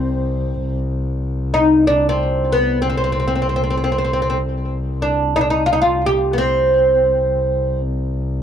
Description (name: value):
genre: Arabic maqam ensemble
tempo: free time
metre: none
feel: none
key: C maqam nahawand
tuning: A4 = 439 Hz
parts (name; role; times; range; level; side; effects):
- oud; melody; 0.0-7.8 s; B3 to G4; -17 LUFS; equal; tape echo
- warm double bass; drone; 0.0-8.4 s; C2; -21 LUFS; left 1 dB; stereo widening
room: light reverb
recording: dry, close 1970s-style studio recording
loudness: -15 LUFS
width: side -8 dB against mid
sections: 0.0-8.4 A section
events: none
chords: none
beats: free time